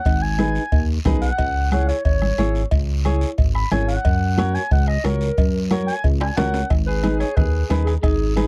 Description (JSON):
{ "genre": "latin, cumbia", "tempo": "180 BPM", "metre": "4/4", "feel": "straight", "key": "G# minor", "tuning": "A4 = 443 Hz", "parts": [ { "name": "dark clarinet", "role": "melody", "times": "0.0-8.5 s", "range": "G#4 to B5", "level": "-28 LUFS", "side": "equal", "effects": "none" }, { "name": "smooth synth bass", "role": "bass", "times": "0.1-8.5 s", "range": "G#1 to F#2", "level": "-24 LUFS", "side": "equal", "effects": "none" }, { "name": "bombo", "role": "percussion", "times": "0.1-8.5 s", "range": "none", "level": "-23 LUFS", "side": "equal", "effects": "none" }, { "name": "cowbell and timbales", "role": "percussion", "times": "0.1-8.5 s", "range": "none", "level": "-33 LUFS", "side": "equal", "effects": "none" }, { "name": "guiro", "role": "percussion", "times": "0.1-8.5 s", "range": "none", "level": "-42 LUFS", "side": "equal", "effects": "none" }, { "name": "flamenco guitar", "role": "accompaniment", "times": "0.4-8.5 s", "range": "D#4 to C#5", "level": "-27 LUFS", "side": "equal", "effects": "none" }, { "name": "congas", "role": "percussion", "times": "0.4-8.5 s", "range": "none", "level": "-28 LUFS", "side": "equal", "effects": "none" }, { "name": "clean electric guitar", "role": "second line", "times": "6.9-8.5 s", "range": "D#4 to G#4", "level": "-31 LUFS", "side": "equal", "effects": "none" } ], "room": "little or no reverb", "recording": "dark, warm production", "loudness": "-20 LUFS", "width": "mono", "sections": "0.0-6.7 A section; 6.7-8.5 B section", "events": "clarinet solo 0.0-6.7; drum fill 6.2-6.7", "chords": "0.0 G#m; 1.4 C#m; 4.0 F#; 6.7 G#m" }